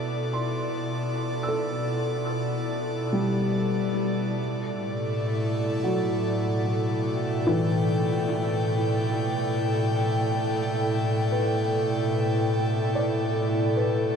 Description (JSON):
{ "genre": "ambient", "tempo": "55 BPM", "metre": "4/4", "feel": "straight", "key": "unclear", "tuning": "A4 = 440 Hz", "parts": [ { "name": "airy breathy pad", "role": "sustained chords", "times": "0.0-14.2 s", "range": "A2 to A5", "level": "-24 LUFS", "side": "equal", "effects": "chorus" }, { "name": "felt-muted upright piano", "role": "arpeggios", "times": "0.0-14.2 s", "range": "E3 to E6", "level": "-30 LUFS", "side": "left 1 dB", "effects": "tape echo" } ], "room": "wet huge ambient reverb, RT60 7.1 s", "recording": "dark, warm production", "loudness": "-23 LUFS", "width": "side -6 dB against mid", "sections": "0.0-14.2 A section", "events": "none", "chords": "0.0 Am7; 4.4 G/A" }